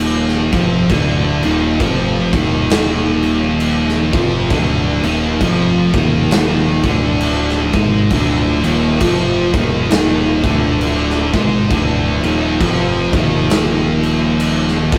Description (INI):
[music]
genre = stoner and doom metal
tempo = 67 BPM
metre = 4/4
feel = swing 59% on 8ths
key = unclear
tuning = A4 = 440 Hz
[part]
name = phased string machine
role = sustained chords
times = 0.0-15.0 s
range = F3 to E5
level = -30 LUFS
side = equal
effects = none
[part]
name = high-gain distorted guitar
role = riff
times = 0.0-15.0 s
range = D2 to G#3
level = -22 LUFS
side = equal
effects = distortion
[part]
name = thick fuzz guitar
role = riff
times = 0.0-15.0 s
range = D2 to G#3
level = -20 LUFS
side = equal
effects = distortion
[part]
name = growling picked electric bass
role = bass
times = 0.0-15.0 s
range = D1 to G#1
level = -23 LUFS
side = equal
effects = overdrive
[part]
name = big rock drum kit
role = drums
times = 0.0-15.0 s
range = crash cymbal, kick drum, snare drum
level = -21 LUFS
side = equal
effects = none
[sound]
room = light reverb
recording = rough rehearsal-room recording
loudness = -15 LUFS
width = mono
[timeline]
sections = 0.0-15.0 A section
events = none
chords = 0.0 Dm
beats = 0.01 | 0.91 1.81 2.71 3.61 | 4.51 5.41 6.31 7.21 | 8.11 9.01 9.91 10.81 | 11.71 12.61 13.50 14.40